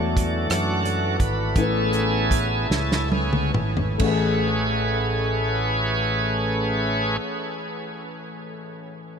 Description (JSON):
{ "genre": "slow gospel", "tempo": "43-60 BPM (dotted quarters)", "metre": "6/8", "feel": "straight", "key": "A major", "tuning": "A4 = 440 Hz", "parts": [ { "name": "warm upright piano", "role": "accompaniment", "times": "0.0-9.2 s", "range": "A1 to D5", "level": "-28 LUFS", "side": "left 4 dB", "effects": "analog chorus" }, { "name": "bright tonewheel organ", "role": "sustained chords", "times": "0.0-7.2 s", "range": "F#3 to B4", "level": "-25 LUFS", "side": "right 2 dB", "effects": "slow rotary speaker, overdrive" }, { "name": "fingered electric bass", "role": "bass", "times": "0.0-7.2 s", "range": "G#1 to F#2", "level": "-26 LUFS", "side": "right 1 dB", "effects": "none" }, { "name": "warm soul drum kit", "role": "drums", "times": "0.2-4.2 s", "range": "crash cymbal, hi-hat, kick drum, rim click, snare drum, toms", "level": "-26 LUFS", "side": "right 1 dB", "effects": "none" } ], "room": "wet huge ambient reverb, RT60 7.9 s", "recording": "dreamy mix soaked in reverb", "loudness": "-20 LUFS", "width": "side -6 dB against mid", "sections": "0.0-4.0 A section; 4.0-9.2 B section", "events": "slowing down 0.0-4.0; tonewheel organ solo 0.0-4.0; drum fill 2.7-4.0", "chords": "0.0 E9sus4; 1.6 Amaj9" }